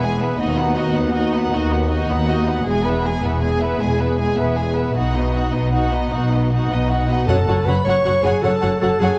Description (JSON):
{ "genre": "cinematic", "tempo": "105 BPM (dotted quarters)", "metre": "12/8", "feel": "straight", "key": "unclear", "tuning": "A4 = 440 Hz", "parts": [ { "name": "rich studio violin section", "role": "melody", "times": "0.0-9.2 s", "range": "D#5 to C#6", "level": "-30 LUFS", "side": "equal", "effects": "none" }, { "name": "rich chamber violin section", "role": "second line", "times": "0.0-9.1 s", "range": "D#4 to F#5", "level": "-28 LUFS", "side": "equal", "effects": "none" }, { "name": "rich symphonic viola section", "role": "accompaniment", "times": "0.0-9.1 s", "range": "F#3 to F#4", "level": "-28 LUFS", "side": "equal", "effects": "none" }, { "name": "dark French horn section", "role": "sustained chords", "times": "0.0-7.1 s", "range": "B3 to G#4", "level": "-28 LUFS", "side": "equal", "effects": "none" }, { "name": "dark symphonic cello section", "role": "bass", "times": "0.0-9.1 s", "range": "D#2 to B2", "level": "-26 LUFS", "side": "equal", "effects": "none" }, { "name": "warm symphonic double bass section", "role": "bass", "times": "0.0-9.1 s", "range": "E1 to D#2", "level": "-26 LUFS", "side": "equal", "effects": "none" }, { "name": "warm clarinet", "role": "second line", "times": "6.7-9.2 s", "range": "D#4 to C#5", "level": "-23 LUFS", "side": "equal", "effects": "none" }, { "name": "timpani", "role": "percussion", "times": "7.3-7.8 s", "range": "F#2", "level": "-26 LUFS", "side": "equal", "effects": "none" } ], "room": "moderate scoring stage reverb, RT60 1.8 s", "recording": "worn, warbling old tape, cassette tape, warbly pitch drift", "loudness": "-19 LUFS", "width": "mono", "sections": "0.0-7.3 A section; 7.3-9.2 B section", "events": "build-up 0.0-7.3", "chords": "0.4 B/D#; 2.7 E; 5.0 B; 7.3 F#m" }